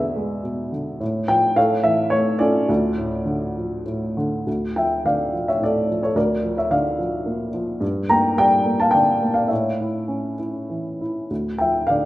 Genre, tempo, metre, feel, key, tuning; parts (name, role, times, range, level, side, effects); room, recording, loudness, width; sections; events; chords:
classical, lyrical solo piano; 97-110 BPM; 3/4; rubato; D harmonic minor; A4 = 441 Hz
dark upright piano; solo; 0.0-12.1 s; D2 to Bb5; -19 LUFS; equal
wet recital hall reverb, RT60 1.6 s; recorded in a church or concert hall; -19 LUFS; side -16 dB against mid
0.0-4.5 A section; 4.5-12.1 B section
0.0 E7; 1.0 Fadd9/A; 1.6 A; 2.7 Dm; 6.2 Bb/D; 7.8 Gm; 9.5 A; 11.3 Dm